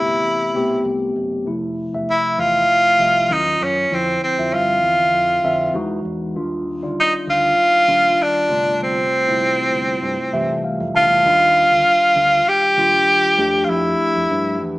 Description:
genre	polished 1980s jazz-funk pop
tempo	98 BPM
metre	4/4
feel	swing 54% on 16ths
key	unclear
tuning	A4 = 440 Hz
part	breathy tenor saxophone	melody	0.0-14.6 s	C4 to G4	-15 LUFS	equal	none
part	mellow tine electric piano	accompaniment	0.0-14.8 s	C3 to A5	-23 LUFS	equal	slow stereo tremolo
part	fingered electric bass	bass	0.0-14.8 s	E1 to A2	-31 LUFS	equal	none
room	moderate stone room reverb, RT60 1.0 s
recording	band playing live in one room, small speaker sound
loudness	-15 LUFS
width	side -20 dB against mid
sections	0.0-11.2 A section; 11.2-14.8 B section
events	tine electric piano fill 10.0-11.2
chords	0.0 Am9; 1.5 Fmaj7; 3.3 Ebm9; 3.9 Dm9/F; 5.7 Emaj9; 6.4 Ebmaj9; 8.5 G9sus4; 11.2 Ebmaj9; 13.4 F69

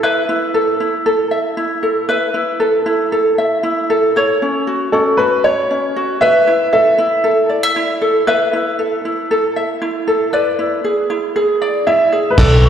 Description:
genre	acoustic pop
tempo	117 BPM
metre	4/4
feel	straight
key	unclear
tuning	A4 = 442 Hz
part	ukulele	accompaniment	0.0-12.7 s	C#4 to E5	-15 LUFS	equal	slapback echo
part	clear upright piano	melody	4.9-7.7, 11.9-12.7 s	A4 to E5	-14 LUFS	equal	slapback echo
part	picked steel-string acoustic guitar	arpeggios	12.4-12.5 s	D5	-22 LUFS	right 4 dB	slapback echo
part	vintage muted fingered electric bass	bass	12.4-12.7 s	B1	-10 LUFS	equal	none
part	vintage brush drum kit	drums	12.4-12.5 s	crash cymbal, kick drum	-13 LUFS	equal	none
room	wet lush hall reverb, RT60 2.1 s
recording	live gig heard through the venue's PA, recital hall reverb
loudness	-13 LUFS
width	side -8 dB against mid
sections	0.0-12.4 A section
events	none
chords	0.0 Esus4; 4.2 F#m; 6.2 Esus4; 8.3 Asus2; 10.3 E7

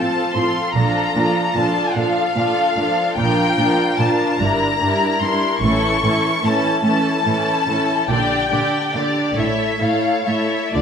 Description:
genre	classical, slow romantic movement for string orchestra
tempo	41-50 BPM (dotted quarters)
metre	6/8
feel	rubato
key	unclear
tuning	A4 = 440 Hz
part	rich symphonic violin section	melody	0.0-10.8 s	D5 to C#6	-20 LUFS	left 2 dB	none
part	rich chamber violin section	second line	0.0-10.8 s	E4 to D5	-22 LUFS	left 1 dB	none
part	rich symphonic viola section	accompaniment	0.0-10.8 s	D3 to F4	-21 LUFS	right 1 dB	none
part	warm symphonic cello section	bass	0.0-10.8 s	G2 to D3	-25 LUFS	right 2 dB	none
part	warm symphonic double bass section	bass	0.7-10.8 s	G1 to D2	-24 LUFS	right 3 dB	none
room	wet recital hall reverb, RT60 1.4 s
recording	none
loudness	-16 LUFS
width	side -7 dB against mid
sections	0.0-10.8 A section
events	none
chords	0.0 F; 0.8 Bbmaj7; 4.4 Em7b5/G; 5.6 A; 8.1 Gm/Bb; 9.4 A

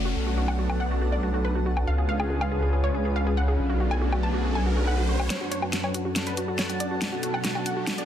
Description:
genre	heavy wobble dubstep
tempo	140 BPM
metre	4/4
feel	half-time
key	F# harmonic minor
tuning	A4 = 441 Hz
part	wide unison pluck	melody	0.0-8.1 s	F#4 to A5	-31 LUFS	equal	tape echo
part	lush unison pad	sustained chords	0.0-8.1 s	F#2 to A4	-32 LUFS	left 1 dB	chorus
part	wobble bass	bass	0.0-5.3 s	F#1 to C#2	-25 LUFS	equal	chorus, overdrive
part	downlifter and riser	sound effects	0.0-8.1 s	none	-38 LUFS	right 2 dB	none
part	granular cloud pad	texture	0.0-8.1 s	C#4 to A5	-34 LUFS	left 1 dB	built-in reverb
part	dubstep drum kit	drums	0.5-8.1 s	hi-hat, snare drum, woodblock	-29 LUFS	left 1 dB	overdrive, soft clipping on snare
room	light reverb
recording	dense, heavily limited modern master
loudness	-23 LUFS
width	side -10 dB against mid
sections	0.0-5.3 A section; 5.3-8.1 B section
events	riser 3.3-5.3, 5.3-8.1; build-up 5.3-8.1; drum fill 5.3-8.1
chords	0.2 Bm7; 1.9 C#; 3.6 Bm7; 5.3 F#m; 7.0 Bm7

